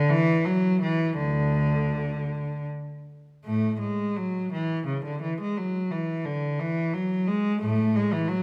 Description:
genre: classical, baroque-style suite movement for unaccompanied cello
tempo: 78-90 BPM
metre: 3/4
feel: rubato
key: D major, A major from 3.4 s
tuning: A4 = 439 Hz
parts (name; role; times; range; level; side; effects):
- rich cello; solo; 0.0-8.4 s; D2 to A3; -26 LUFS; equal; none
room: wet recital hall reverb, RT60 1.5 s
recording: none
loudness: -26 LUFS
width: mono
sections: 0.0-3.4 A section; 3.4-8.4 A section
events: none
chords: none

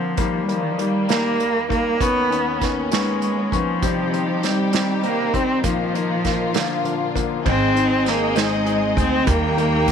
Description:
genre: six-eight pop ballad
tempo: 66 BPM (dotted quarters)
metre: 6/8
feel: straight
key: Eb major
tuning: A4 = 440 Hz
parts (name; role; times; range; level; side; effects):
- rich cello; melody; 0.0-9.9 s; Eb3 to C4; -21 LUFS; right 2 dB; none
- bright concert grand piano; accompaniment; 0.0-9.9 s; D3 to C#4; -24 LUFS; left 11 dB; none
- warm studio string section; sustained chords; 0.2-9.9 s; Eb2 to G5; -26 LUFS; equal; none
- unplugged drum kit; drums; 0.2-9.9 s; crash cymbal, hi-hat, kick drum, snare drum; -25 LUFS; right 4 dB; none
- upright bass; bass; 7.5-9.9 s; Ab1 to Eb2; -24 LUFS; right 1 dB; none
room: light reverb, small room ambience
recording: 1960s-style stereo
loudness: -18 LUFS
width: side -7 dB against mid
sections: 0.0-7.5 A section; 7.5-9.9 B section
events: none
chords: 0.2 Eb; 2.0 Badd9/D#; 3.8 Cm; 5.6 Bbsus4; 6.6 Bb; 7.5 Ab; 9.3 Eb

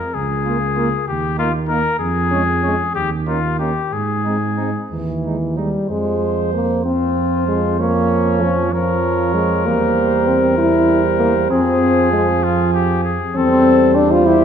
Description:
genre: classical, brass quintet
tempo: 64 BPM (dotted quarters)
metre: 6/8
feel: rubato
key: F minor from 5.9 s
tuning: A4 = 440 Hz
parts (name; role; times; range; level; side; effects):
- clear trumpet; melody; 0.0-14.4 s; Db4 to Bb4; -21 LUFS; left 6 dB; none
- dark tuba; bass; 0.1-14.4 s; Db2 to Ab2; -22 LUFS; right 3 dB; none
- mellow trumpet; second line; 0.4-14.4 s; Db4 to Db5; -23 LUFS; right 8 dB; none
- warm French horn; accompaniment; 0.5-14.4 s; Fb3 to F4; -18 LUFS; left 2 dB; none
- warm trombone; accompaniment; 0.5-14.4 s; F3 to Bb3; -23 LUFS; right 4 dB; none
room: wet recital hall reverb, RT60 1.5 s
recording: dark, warm production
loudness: -15 LUFS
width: side -8 dB against mid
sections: 0.0-5.9 A section; 5.9-14.4 B section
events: none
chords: 0.2 Bbm/Db; 1.1 Eb5; 2.0 Db/F; 3.0 Eb5; 3.9 Ab; 5.9 Fm; 7.8 Bbm/F; 9.7 C7/E; 11.5 Fm; 13.4 C/E

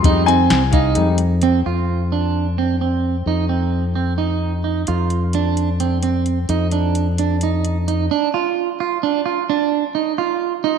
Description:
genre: progressive instrumental, band music in an uneven meter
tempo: 260 BPM (eighths)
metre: 7/8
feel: straight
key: F dorian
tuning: A4 = 441 Hz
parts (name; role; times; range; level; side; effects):
- clear concert grand piano; accompaniment; 0.0-1.2 s; G3 to C6; -19 LUFS; left 14 dB; none
- modern bright fingered electric bass; bass; 0.0-8.1 s; C2 to F2; -19 LUFS; left 2 dB; none
- soft vintage rhythm box; drums; 0.0-1.5, 4.9-8.0 s; hi-hat, kick drum, snare drum; -20 LUFS; left 2 dB; none
- clean electric guitar; arpeggios; 0.1-10.8 s; C4 to F4; -19 LUFS; right 9 dB; spring reverb
room: moderate echo chamber reverb, RT60 1.7 s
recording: 1960s-style stereo with parts hard left and right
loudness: -16 LUFS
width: side -7 dB against mid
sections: 0.0-1.7 A section; 1.7-8.1 B section; 8.1-10.8 C section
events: grand piano solo 0.0-1.7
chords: 0.0 Fm7; 1.7 F5; 3.3 Cm/F; 4.9 F5; 6.5 Dm/F; 8.1 Dm

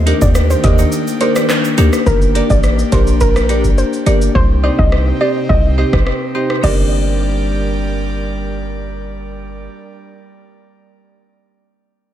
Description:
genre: dancehall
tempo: 105 BPM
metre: 4/4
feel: straight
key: G minor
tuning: A4 = 440 Hz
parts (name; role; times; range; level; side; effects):
- airy breathy pad; sustained chords; 0.0-9.7 s; C3 to D5; -23 LUFS; equal; chorus
- hard-hitting 808-style bass; bass; 0.0-9.7 s; G1 to Eb2; -16 LUFS; equal; none
- marimba with hard mallets; accompaniment; 0.1-10.0 s; Bb3 to C5; -21 LUFS; left 4 dB; none
- nylon-string guitar; arpeggios; 0.1-10.2 s; D4 to Eb5; -24 LUFS; right 6 dB; none
- booming analog drum machine; drums; 0.1-6.8 s; crash cymbal, handclaps, hi-hat, kick drum, rim click, shaker; -17 LUFS; equal; none
- soft round pluck; melody; 0.2-8.3 s; Bb4 to Eb5; -20 LUFS; right 1 dB; chorus, ping-pong delay
- egg shaker; percussion; 0.2-2.1 s; none; -33 LUFS; right 10 dB; none
room: light reverb, digital ambience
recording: none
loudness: -12 LUFS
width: side -11 dB against mid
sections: 0.0-2.1 A section; 2.1-6.6 B section; 6.6-8.9 C section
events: kick muted 0.9-2.1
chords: 0.0 Ebmaj7; 2.1 Gm; 4.4 Cm; 6.6 Gm

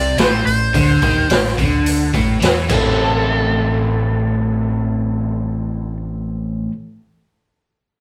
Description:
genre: blues rock power trio and southern rock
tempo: 107 BPM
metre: 4/4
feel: straight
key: A minor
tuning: A4 = 440 Hz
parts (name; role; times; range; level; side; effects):
- smooth overdriven lead guitar; melody; 0.0-6.0 s; A4 to D5; -24 LUFS; equal; wah, analog delay
- crunchy overdriven guitar; riff; 0.0-6.7 s; A2 to E4; -21 LUFS; equal; none
- growling fingered electric bass; bass; 0.0-6.7 s; A1 to E2; -25 LUFS; equal; overdrive
- raw garage drum kit; drums; 0.2-2.8 s; crash cymbal, hi-hat, kick drum, snare drum; -21 LUFS; equal; none
room: moderate large studio reverb, RT60 0.8 s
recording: band playing live in one room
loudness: -17 LUFS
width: mono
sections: 0.0-3.0 A section; 3.0-5.2 B section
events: drum fill 2.7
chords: 0.0 Am

